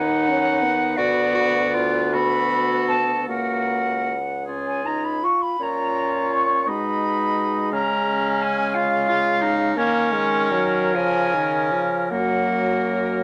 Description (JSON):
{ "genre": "classical, slow romantic movement for wind quintet", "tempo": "48-60 BPM (dotted quarters)", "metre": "6/8", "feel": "rubato", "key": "unclear", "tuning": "A4 = 440 Hz", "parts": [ { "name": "silver concert flute", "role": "melody", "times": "0.0-13.2 s", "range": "C#5 to C#6", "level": "-25 LUFS", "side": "equal", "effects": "none" }, { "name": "clear oboe", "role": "second line", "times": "0.0-13.2 s", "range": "G#4 to E#5", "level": "-31 LUFS", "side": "equal", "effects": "none" }, { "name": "bright clarinet", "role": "accompaniment", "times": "0.0-13.2 s", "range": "A#3 to F#4", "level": "-28 LUFS", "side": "equal", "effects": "none" }, { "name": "warm French horn", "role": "accompaniment", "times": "0.0-13.2 s", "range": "D#3 to E#4", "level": "-28 LUFS", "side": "equal", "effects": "none" }, { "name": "mellow bassoon", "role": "bass", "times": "0.0-13.2 s", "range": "C#2 to D#3", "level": "-29 LUFS", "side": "equal", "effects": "none" } ], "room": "moderate studio reverb, RT60 0.6 s", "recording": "none", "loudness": "-21 LUFS", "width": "mono", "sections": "0.0-13.2 A section", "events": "none", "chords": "0.0 B/D#; 1.0 Bm/D; 2.1 D; 3.3 F#/C#; 4.5 C#; 5.6 A#m; 6.7 G#m/B; 7.7 C#; 9.8 D#m7; 10.9 C#; 12.1 F#" }